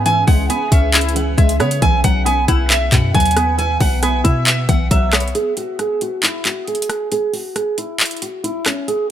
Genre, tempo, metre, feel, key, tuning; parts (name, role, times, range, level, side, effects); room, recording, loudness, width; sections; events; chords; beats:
hip hop, trap; 136 BPM; 4/4; half-time; A4 = 445 Hz
fingerpicked steel-string acoustic guitar; melody; 0.0-9.1 s; C#4 to G#5; -19 LUFS; right 2 dB; low-pass filter, ping-pong delay
glassy wavetable pluck; accompaniment; 0.0-5.4 s; B2 to E5; -22 LUFS; left 2 dB; chorus, low-pass filter
granular cloud pad; sustained chords; 0.0-5.3 s; B3 to F#5; -27 LUFS; right 1 dB; built-in reverb
warm 808-style bass; bass; 0.0-5.3 s; B1 to C#3; -19 LUFS; equal
trap drum kit; drums; 0.1-9.0 s; handclaps, hi-hat, kick drum, rim click; -16 LUFS; equal
digital ambience; -14 LUFS; side -10 dB against mid
0.0-5.4 A section; 5.4-9.1 B section
break 5.4-9.1; filter sweep 5.4-9.1
0.0 C#m7; 1.8 Bsus4; 5.4 N.C.
| 0.06 0.50 0.94 1.38 | 1.82 2.26 2.70 3.15 | 3.59 4.03 4.47 4.91 | 5.35 5.79 6.23 6.67 | 7.12 7.56 8.00 8.44 | 8.88